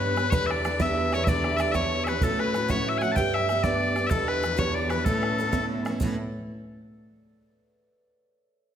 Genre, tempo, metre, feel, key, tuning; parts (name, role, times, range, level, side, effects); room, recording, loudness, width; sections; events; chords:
celtic folk, Celtic jig; 127 BPM (dotted quarters); 6/8; straight; A mixolydian; A4 = 439 Hz
loud bright bagpipes; melody; 0.0-5.7 s; A4 to A5; -28 LUFS; left 4 dB; tape echo
Celtic harp; second line; 0.0-7.0 s; A4 to G5; -32 LUFS; right 4 dB
musette accordion; second line; 0.0-5.7 s; A4 to G5; -35 LUFS; left 4 dB
picked twelve-string acoustic guitar; accompaniment; 0.0-6.2 s; E2 to G4; -30 LUFS; right 2 dB
rich cello; bass; 0.0-6.2 s; E2 to A2; -32 LUFS; equal
bodhran; percussion; 0.2-6.2 s; -30 LUFS; right 2 dB
moderate recital hall reverb, RT60 1.6 s; -23 LUFS; side -9 dB against mid
0.0-6.0 A section
0.3 Em7; 2.2 A6; 3.2 G; 4.1 Em7; 5.1 Aadd9